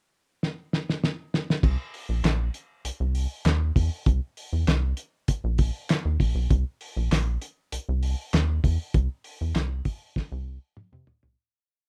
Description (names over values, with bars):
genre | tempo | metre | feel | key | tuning
funk | 98 BPM | 4/4 | straight | unclear | A4 = 439 Hz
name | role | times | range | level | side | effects
cloth-damped thuddy drum kit | drums | 0.4-11.4 s | crash cymbal, handclaps, hi-hat, kick drum, snare drum, toms | -28 LUFS | equal | none
rubbery square bass | bass | 1.6-11.4 s | Bb1 to C3 | -27 LUFS | equal | none
room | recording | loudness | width
light reverb | rough home demo mix | -27 LUFS | mono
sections
0.0-1.6 pickup bar; 1.6-11.4 A section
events
drum fill 0.4-1.6, 10.2-11.4; fade-out 8.9-11.4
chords
none